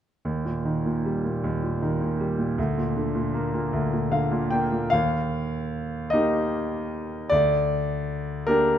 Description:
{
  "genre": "classical, lyrical solo piano",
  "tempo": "51 BPM (dotted quarters)",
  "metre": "6/8",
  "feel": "rubato",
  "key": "Eb major",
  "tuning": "A4 = 440 Hz",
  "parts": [
    { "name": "clear concert grand piano", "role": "solo", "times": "0.2-8.8 s", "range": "D2 to G5", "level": "-23 LUFS", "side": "equal", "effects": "none" }
  ],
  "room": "moderate scoring stage reverb, RT60 1.7 s",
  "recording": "none",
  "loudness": "-23 LUFS",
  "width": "side -9 dB against mid",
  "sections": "0.3-4.9 A section; 4.9-8.8 B section",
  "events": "grand piano fill 3.7-4.9",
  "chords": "0.3 Eb; 2.6 Bb6/D; 4.9 Eb; 7.3 Gm/D",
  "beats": "| 0.25 1.44 | 2.58 3.73 | 4.92 6.13 | 7.32 8.48"
}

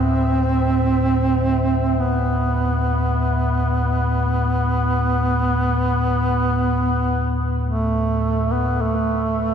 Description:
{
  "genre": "dark ambient drone",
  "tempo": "free time",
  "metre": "none",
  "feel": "none",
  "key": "unclear",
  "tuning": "A4 = 441 Hz",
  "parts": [
    { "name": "mellow duduk", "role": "melody", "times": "0.0-9.5 s", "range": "A3 to C4", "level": "-20 LUFS", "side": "right 2 dB", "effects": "diffuse ambient delay" },
    { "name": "deep rumbling drone", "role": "drone", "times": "0.0-9.5 s", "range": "D2 to A2", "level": "-21 LUFS", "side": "left 1 dB", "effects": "built-in reverb, wide subtle chorus" },
    { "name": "bubbling stepped-filter texture", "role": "texture", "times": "0.0-8.8 s", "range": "E5", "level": "-35 LUFS", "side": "left 1 dB", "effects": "chorus, built-in reverb" }
  ],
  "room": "moderate plate reverb, RT60 3.6 s",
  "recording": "dreamy mix soaked in reverb",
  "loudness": "-18 LUFS",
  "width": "side -8 dB against mid",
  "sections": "0.0-8.8 A section",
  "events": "fade-out on synth texture 0.0-8.8",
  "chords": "0.0 Cmaj13/D",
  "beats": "free time"
}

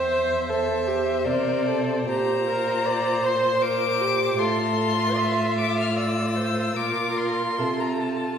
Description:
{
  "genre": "classical, slow romantic movement for string quartet",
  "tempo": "69-81 BPM",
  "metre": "3/4",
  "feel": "rubato",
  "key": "F major",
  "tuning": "A4 = 442 Hz",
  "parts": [
    { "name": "rich violin", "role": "melody", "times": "0.0-8.4 s", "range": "D5 to F6", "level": "-26 LUFS", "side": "left 4 dB", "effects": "none" },
    { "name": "rich violin", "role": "second line", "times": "0.0-8.4 s", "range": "F4 to C5", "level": "-26 LUFS", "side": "equal", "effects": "none" },
    { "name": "clear viola", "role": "accompaniment", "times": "0.0-8.4 s", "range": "G4 to E5", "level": "-28 LUFS", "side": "right 2 dB", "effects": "none" },
    { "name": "rich cello", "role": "bass", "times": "0.0-8.4 s", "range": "E2 to C3", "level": "-28 LUFS", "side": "right 2 dB", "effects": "none" }
  ],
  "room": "wet recital hall reverb, RT60 1.4 s",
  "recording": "recorded in a church or concert hall",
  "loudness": "-21 LUFS",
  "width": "side -8 dB against mid",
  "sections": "0.0-8.4 A section",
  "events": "none",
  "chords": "0.0 C/E; 2.1 Bb69; 4.4 F/A; 6.8 Bbadd9; 7.6 F/C",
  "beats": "0.49 1.26 | 2.09 2.87 3.63 | 4.40 5.18 5.97 | 6.77 7.59"
}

